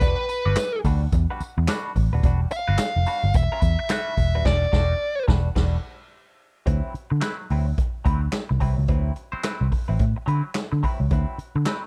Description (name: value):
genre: funk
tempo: 108 BPM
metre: 4/4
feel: swing 60% on 16ths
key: D mixolydian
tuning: A4 = 440 Hz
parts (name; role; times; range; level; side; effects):
- nasal lead guitar with a parked wah; melody; 0.0-5.2 s; B4 to F5; -28 LUFS; equal; overdrive, slapback echo
- semi-hollow electric guitar; accompaniment; 0.0-11.9 s; F#3 to D5; -35 LUFS; equal; wah, spring reverb
- vintage muted picked electric bass; bass; 0.0-11.6 s; Eb1 to D3; -24 LUFS; equal; none
- swinging big-band drum kit; drums; 0.0-11.8 s; crash cymbal, handclaps, hi-hat, kick drum, snare drum; -27 LUFS; equal; none
- tambourine; percussion; 0.0-4.3 s; none; -48 LUFS; equal; none
room: little or no reverb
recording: none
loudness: -23 LUFS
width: mono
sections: 0.0-6.7 A section; 6.7-11.9 B section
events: band accent 4.5-6.7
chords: 0.0 Em9; 6.7 D13